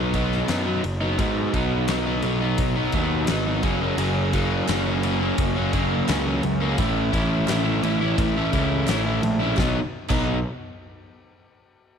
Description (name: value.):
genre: classic rock.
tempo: 86 BPM.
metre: 4/4.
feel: straight.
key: B major.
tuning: A4 = 440 Hz.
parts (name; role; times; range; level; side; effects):
overdriven electric guitar; riff; 0.0-10.4 s; F#2 to E4; -23 LUFS; equal; none.
fuzz picked electric bass; bass; 0.0-10.4 s; F#1 to G#2; -25 LUFS; equal; overdrive.
huge arena drum kit; drums; 0.1-10.3 s; crash cymbal, kick drum, ride cymbal, snare drum; -29 LUFS; left 1 dB; none.
group handclap; percussion; 4.7-10.4 s; none; -41 LUFS; right 13 dB; none.
room: light reverb, studio reverb.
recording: 1960s-style stereo.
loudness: -20 LUFS.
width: side -7 dB against mid.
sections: 0.0-9.6 A section; 9.6-12.0 B section.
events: none.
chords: 0.0 B; 3.6 F#; 6.8 A; 9.6 B.